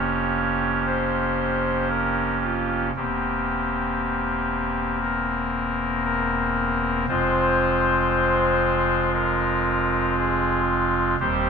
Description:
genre	classical, chorale-style piece for pipe organ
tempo	58 BPM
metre	4/4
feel	straight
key	F minor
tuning	A4 = 440 Hz
part	pipe organ, soft reed	solo	0.0-11.5 s	Eb1 to Db5	-20 LUFS	equal	none
room	moderate stone room reverb, RT60 1.0 s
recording	minimal, uncompressed stereo recording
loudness	-20 LUFS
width	side -6 dB against mid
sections	0.0-11.5 A section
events	none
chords	0.0 Gm7b5/F; 3.0 C7/E; 7.1 Fm

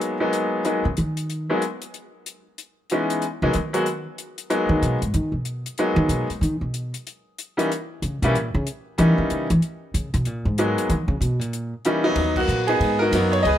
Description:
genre	jazz piano trio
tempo	188 BPM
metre	4/4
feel	swing 62% on 8ths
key	G# minor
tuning	A4 = 440 Hz
part	bright upright piano	melody	0.0-13.6 s	E3 to D#5	-22 LUFS	equal	plate reverb
part	compact cocktail drum kit	drums	0.0-13.5 s	crash cymbal, hi-hat, kick drum, ride cymbal	-33 LUFS	left 4 dB	none
part	upright bass	bass	0.9-13.6 s	C#2 to E3	-22 LUFS	equal	none
room	light reverb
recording	none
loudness	-20 LUFS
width	side -11 dB against mid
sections	0.0-12.2 A section; 12.2-13.6 B section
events	upright bass solo 0.0-12.2; band accent 12.3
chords	0.0 G#m9; 1.9 C#m9; 3.2 G#m9; 7.1 D#7b9; 9.6 G#m9; 10.9 D#7b9; 12.2 G#m9

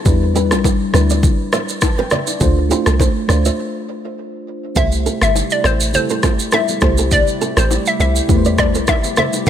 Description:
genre	afrobeats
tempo	102 BPM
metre	4/4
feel	swing 55% on 16ths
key	unclear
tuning	A4 = 440 Hz
part	mellow FM electric piano	accompaniment	0.0-9.5 s	G3 to A5	-21 LUFS	left 1 dB	chorus, phaser
part	deep log drum bass	bass	0.1-9.5 s	G1 to E2	-17 LUFS	equal	none
part	deep house drum kit	drums	0.1-9.5 s	kick drum, rim click, shaker	-18 LUFS	equal	none
part	congas and bongos	percussion	0.1-9.5 s	none	-26 LUFS	left 6 dB	none
part	flamenco guitar	riff	0.4-9.5 s	E4 to E5	-23 LUFS	right 7 dB	tape echo
part	hollow square pluck	melody	4.8-9.3 s	C5 to E5	-19 LUFS	left 1 dB	chorus, tape echo
part	hollow soft pad	sustained chords	4.8-9.5 s	C3 to G4	-25 LUFS	equal	chorus
room	little or no reverb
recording	none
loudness	-13 LUFS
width	side -10 dB against mid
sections	0.0-4.8 A section; 4.8-9.5 B section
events	break 3.6-4.8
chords	0.1 Em7; 2.4 Dm7; 4.8 C6; 6.8 Am7

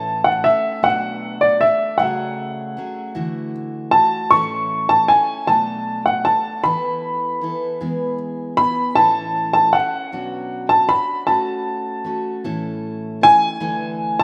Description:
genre	acoustic folk duo or small band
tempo	52 BPM (dotted quarters)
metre	6/8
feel	straight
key	A major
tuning	A4 = 440 Hz
part	clear upright piano	melody	0.0-14.2 s	D5 to C#6	-19 LUFS	equal	none
part	picked steel-string acoustic guitar	accompaniment	0.0-14.2 s	A2 to A4	-29 LUFS	equal	none
room	moderate lush hall reverb, RT60 2.4 s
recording	rough home demo mix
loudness	-19 LUFS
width	mono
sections	0.0-14.2 A section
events	none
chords	0.0 A; 0.8 Bm7; 2.0 F#madd9/C#; 3.2 Dadd9; 4.3 A; 5.5 Bm7; 6.7 Esus4; 7.8 E; 9.0 A; 10.1 Bmadd9; 11.3 F#m/A; 12.4 A; 13.6 Dsus2

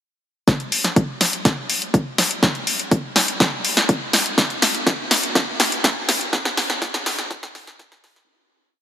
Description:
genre	house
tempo	123 BPM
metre	4/4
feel	straight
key	none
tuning	none
part	electronic kick drum	drums	0.5-7.9 s	none	-18 LUFS	equal	high-pass filter on kick
part	house drum kit	drums	0.5-8.3 s	hi-hat, snare drum	-18 LUFS	equal	high-pass filter on snare, sidechain pumping on hats, high-pass filter on hats
room	moderate huge ambient reverb, RT60 4.6 s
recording	dreamy mix soaked in reverb, high-pass filter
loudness	-17 LUFS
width	side -10 dB against mid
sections	0.5-8.3 build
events	build-up 0.5-8.3; drum fill 0.5-8.3; fade-out 5.7-8.3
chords	none

